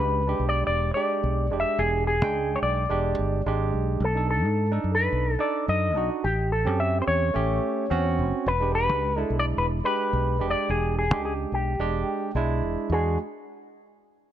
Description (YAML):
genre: blues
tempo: 108 BPM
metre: 4/4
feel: swing 55% on 16ths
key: E mixolydian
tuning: A4 = 440 Hz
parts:
  - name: electric guitar with an envelope filter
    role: melody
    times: 0.0-13.2 s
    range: G4 to E5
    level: -26 LUFS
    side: left 2 dB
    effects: none
  - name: barky tine electric piano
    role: accompaniment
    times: 0.0-13.2 s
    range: G#3 to G5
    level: -29 LUFS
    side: right 5 dB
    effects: none
  - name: fingered electric bass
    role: bass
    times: 0.0-13.2 s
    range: E1 to G#2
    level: -26 LUFS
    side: equal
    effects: none
room: light reverb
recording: none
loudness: -22 LUFS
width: side -11 dB against mid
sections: 0.0-12.9 A section; 12.9-14.3 B section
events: none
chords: 0.0 E7#9; 4.0 B7#9; 6.2 A7#9; 8.5 E7#9; 12.9 E9